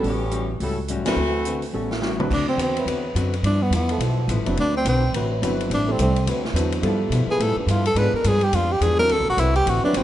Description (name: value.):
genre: jazz, big band swing.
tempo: 212 BPM.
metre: 4/4.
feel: swing 61% on 8ths.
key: D mixolydian.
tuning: A4 = 439 Hz.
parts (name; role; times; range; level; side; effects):
clear saxophone section; melody; 0.0-1.6 s; E3 to A4; -26 LUFS; left 1 dB; none.
archtop guitar, miked and amplified; accompaniment; 0.0-10.0 s; G2 to B4; -29 LUFS; left 4 dB; none.
warm baby grand piano; accompaniment; 0.0-2.3, 4.5-10.0 s; F#3 to C5; -29 LUFS; right 2 dB; none.
upright bass; bass; 0.0-10.0 s; F1 to B2; -23 LUFS; equal; none.
swinging big-band drum kit; drums; 0.0-10.0 s; crash cymbal, hi-hat, kick drum, ride cymbal, snare drum, toms; -31 LUFS; left 1 dB; none.
clear tenor saxophone; melody; 2.3-10.0 s; B3 to B4; -22 LUFS; equal; none.
muted trombone section; sustained chords; 2.8-9.9 s; F3 to B4; -31 LUFS; right 1 dB; none.
room: moderate concert hall reverb, RT60 1.7 s.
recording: nothing above 11.0 kHz.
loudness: -19 LUFS.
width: side -12 dB against mid.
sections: 0.0-2.3 A section; 2.3-10.0 B section.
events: band accent 1.0; drum fill 1.7-2.3; tenor saxophone solo 2.3-10.0.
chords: 0.0 A13; 1.2 D13; 1.7 A13; 2.3 D13; 3.4 G13; 4.6 D13; 5.7 Am7; 6.3 D13; 6.8 G13; 8.0 G#dim7; 9.1 D13.